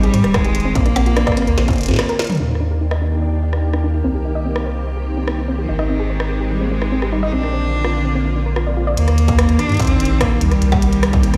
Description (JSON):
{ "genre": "IDM", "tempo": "146 BPM", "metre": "4/4", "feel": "straight", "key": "Eb major", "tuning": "A4 = 442 Hz", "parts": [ { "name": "rich cello", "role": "melody", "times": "0.0-2.0, 5.6-11.4 s", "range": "Eb3 to Eb4", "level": "-23 LUFS", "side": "equal", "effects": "delay" }, { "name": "soft string machine", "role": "sustained chords", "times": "0.0-11.4 s", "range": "D3 to G4", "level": "-27 LUFS", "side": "equal", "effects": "ensemble chorus, vintage 12-bit sampler grit" }, { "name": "soft round pluck", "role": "arpeggios", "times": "0.0-8.9 s", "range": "C4 to Eb5", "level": "-27 LUFS", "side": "equal", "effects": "chorus, cassette tape, delay" }, { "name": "warm sub bass", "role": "bass", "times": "0.0-11.4 s", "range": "Eb1 to Bb2", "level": "-21 LUFS", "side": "equal", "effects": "none" }, { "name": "glitchy drum kit", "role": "drums", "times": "0.0-11.4 s", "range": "hi-hat, percussion blips, rim click, snare drum, toms", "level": "-26 LUFS", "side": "equal", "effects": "studio reverb, delay" }, { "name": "electronic kick drum", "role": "drums", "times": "0.3-1.8, 9.3-11.2 s", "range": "none", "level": "-21 LUFS", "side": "equal", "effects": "distortion, studio reverb" } ], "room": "light reverb", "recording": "played on a big sound system in a bare room, stone room reverb", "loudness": "-17 LUFS", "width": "mono", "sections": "0.0-2.4 A section; 2.4-9.0 B section; 9.0-11.4 C section", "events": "filter sweep on synth arpeggio sound 0.0-2.4; drum fill 1.6-2.4", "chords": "0.0 Abmaj7; 0.8 Bbadd9; 2.4 Ebmaj7; 4.0 Cm7; 5.7 Abmaj7; 7.3 Bbadd9; 9.0 Ebmaj7; 10.6 Cm7" }